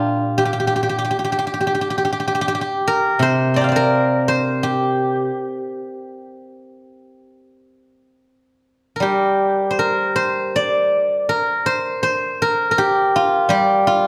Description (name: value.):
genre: chinese traditional, Chinese solo plucked strings.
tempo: 75-87 BPM.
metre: 4/4.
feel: rubato.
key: G yu mode.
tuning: A4 = 438 Hz.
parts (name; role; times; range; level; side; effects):
steel-string zither; solo; 0.0-14.1 s; Bb2 to C6; -19 LUFS; equal; none.
room: moderate recital hall reverb, RT60 1.6 s.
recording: none.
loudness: -19 LUFS.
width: mono.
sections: 0.0-9.0 A section; 9.0-14.1 B section.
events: none.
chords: none.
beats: | 0.36 1.09 1.80 2.51 | 3.22 3.92 4.61 5.29 | 6.00 6.73 7.46 8.23 | 9.02 9.78 10.53 11.27 | 12.01 12.77 13.50.